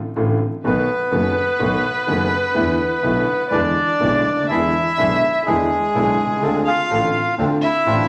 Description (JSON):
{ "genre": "tango", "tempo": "125 BPM", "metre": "4/4", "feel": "rubato", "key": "unclear", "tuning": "A4 = 440 Hz", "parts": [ { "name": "warm concert grand piano", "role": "accompaniment", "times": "0.2-8.1 s", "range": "F#1 to F#4", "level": "-24 LUFS", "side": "equal", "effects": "none" }, { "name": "clear double bass", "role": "bass", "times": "0.2-8.1 s", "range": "F#1 to E2", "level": "-29 LUFS", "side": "equal", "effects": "none" }, { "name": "bandoneon", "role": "melody", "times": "0.7-8.1 s", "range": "G#3 to F5", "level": "-22 LUFS", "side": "equal", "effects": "none" }, { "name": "warm violin", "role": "second line", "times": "0.7-8.1 s", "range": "G#4 to F5", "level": "-27 LUFS", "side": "equal", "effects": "none" }, { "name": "bandoneon", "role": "stabs", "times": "4.5-8.1 s", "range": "C4 to G#4", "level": "-30 LUFS", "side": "equal", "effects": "none" } ], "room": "wet large studio reverb, RT60 1.2 s", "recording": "vinyl crackle", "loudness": "-19 LUFS", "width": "mono", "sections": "0.0-8.1 A section", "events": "none", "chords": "0.0 Dm7/A; 0.6 B7; 2.6 E7sus4; 3.5 E7; 6.4 Dm7" }